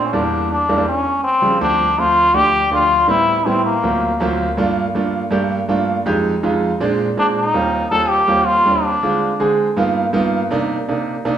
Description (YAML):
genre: jazz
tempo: 162 BPM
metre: 4/4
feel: straight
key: unclear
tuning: A4 = 440 Hz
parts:
  - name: trombone with metal mute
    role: melody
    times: 0.0-4.4, 7.2-9.6 s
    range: Bb3 to A4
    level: -15 LUFS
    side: left 1 dB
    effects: none
  - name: clear concert grand piano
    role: accompaniment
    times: 0.0-11.4 s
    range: D2 to Ab4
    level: -18 LUFS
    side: right 2 dB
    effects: none
room: wet large studio reverb, RT60 1.2 s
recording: band playing live in one room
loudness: -14 LUFS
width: side -9 dB against mid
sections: 0.0-1.6 A section; 1.6-11.4 B section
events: none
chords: 0.1 Em7b5; 0.9 Dbmaj7#11; 1.6 Dm7; 3.1 Am9; 3.8 D7alt; 4.6 Gm9; 6.1 Fm7; 6.8 Bb7; 7.5 Eb69; 9.0 Dm7b5; 9.8 G7alt; 10.5 Cm7